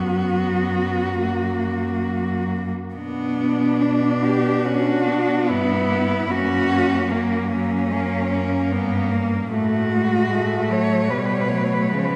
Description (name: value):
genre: classical, lyrical piece for cello ensemble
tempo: 67-77 BPM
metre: 4/4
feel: rubato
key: unclear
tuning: A4 = 440 Hz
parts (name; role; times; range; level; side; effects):
- warm cello; melody; 0.0-12.2 s; C#4 to C#5; -26 LUFS; equal; none
- rich cello; second line; 0.0-12.2 s; E#3 to D4; -27 LUFS; equal; none
- rich cello; accompaniment; 0.0-12.2 s; F#3 to D4; -27 LUFS; equal; none
- rich cello; bass; 0.0-12.2 s; F#2 to C#3; -27 LUFS; equal; none
room: wet church reverb, RT60 3.6 s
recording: recorded in a church or concert hall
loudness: -21 LUFS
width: mono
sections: 0.0-12.2 A section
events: none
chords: 0.0 B5/F#; 1.2 F#; 3.0 Bm; 6.3 F#; 9.5 F#m/A; 11.1 G/B